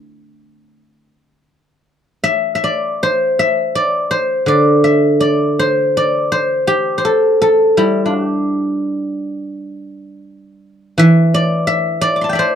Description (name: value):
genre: chinese traditional, Chinese solo plucked strings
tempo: 48-58 BPM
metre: 4/4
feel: rubato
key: D shang mode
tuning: A4 = 440 Hz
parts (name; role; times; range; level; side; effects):
- guzheng; solo; 0.0-12.6 s; D3 to D6; -13 LUFS; equal; none
room: light reverb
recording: dry, close 1970s-style studio recording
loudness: -12 LUFS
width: side -8 dB against mid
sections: 0.0-2.3 A section; 2.3-12.6 B section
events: none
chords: none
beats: 1.04 | 2.25 3.39 4.49 5.59 | 6.71 7.78 8.83 9.91 | 10.97 12.01